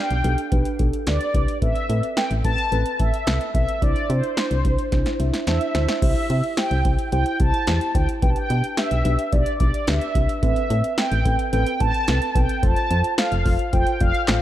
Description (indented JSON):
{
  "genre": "synth-pop",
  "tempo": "109 BPM",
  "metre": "4/4",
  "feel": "straight",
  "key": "C major",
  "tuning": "A4 = 440 Hz",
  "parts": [
    { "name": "mellow synth brass", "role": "melody", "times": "0.0-14.4 s", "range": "C5 to A5", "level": "-25 LUFS", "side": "equal", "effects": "chorus, analog delay" },
    { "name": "muted felt-like synth keys", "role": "accompaniment", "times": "0.0-14.4 s", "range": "C4 to A5", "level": "-28 LUFS", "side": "right 1 dB", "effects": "chorus" },
    { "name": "solid FM bass", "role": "bass", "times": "0.1-14.4 s", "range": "F1 to C3", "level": "-22 LUFS", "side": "equal", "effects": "none" },
    { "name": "electro analog drum machine", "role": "drums", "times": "0.1-14.4 s", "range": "crash cymbal, handclaps, hi-hat, kick drum, snare drum", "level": "-23 LUFS", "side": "equal", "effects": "none" }
  ],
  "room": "light reverb",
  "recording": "dark, warm production",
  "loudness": "-19 LUFS",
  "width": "side -13 dB against mid",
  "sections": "0.0-6.0 A section; 6.0-14.4 B section",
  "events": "drum fill 4.9-6.0; synth keys fill 4.9-6.0",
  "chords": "0.0 G/B; 1.6 Amadd9; 3.8 Cadd9; 6.0 C; 8.2 G/B; 10.4 Amadd9; 12.6 F"
}